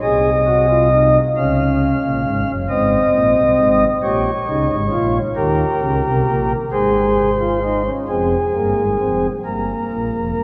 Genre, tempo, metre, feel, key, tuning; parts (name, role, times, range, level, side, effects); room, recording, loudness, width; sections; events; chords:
classical, baroque-style 3-part fugue for pipe organ; 44 BPM (dotted quarters); 6/8; straight; A4 = 436 Hz
pipe organ, flutes; solo; 0.0-10.4 s; F1 to F5; -17 LUFS; equal
wet church reverb, RT60 3.5 s; -17 LUFS; mono
0.0-8.1 A section; 8.1-10.4 B section
0.0 Ab7/C; 1.4 Db; 2.7 Ab; 4.0 Gdim/Bb; 5.4 Eb7; 6.7 Ab; 8.1 Fm; 9.5 Fsus24